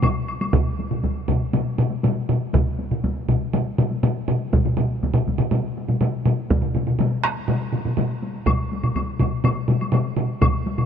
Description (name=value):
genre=japanese traditional, taiko drum ensemble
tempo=121 BPM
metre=4/4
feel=straight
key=none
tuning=none
part: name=solo taiko drums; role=percussion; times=0.0-10.9 s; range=none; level=-24 LUFS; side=left 7 dB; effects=none
part: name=solo taiko drums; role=percussion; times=0.0-10.9 s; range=none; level=-24 LUFS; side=right 6 dB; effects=none
part: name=solo taiko drums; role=percussion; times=0.0-10.5 s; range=none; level=-25 LUFS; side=right 2 dB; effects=none
part: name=taiko ensemble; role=percussion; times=0.0-10.8 s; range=none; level=-28 LUFS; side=left 2 dB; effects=none
part: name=woodblock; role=percussion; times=0.0-0.5, 8.5-10.9 s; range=none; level=-30 LUFS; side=left 2 dB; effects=none
room=moderate huge ambient reverb, RT60 5.3 s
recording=none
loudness=-20 LUFS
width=side -8 dB against mid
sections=0.5-10.9 A section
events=speeding up 0.0-10.9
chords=none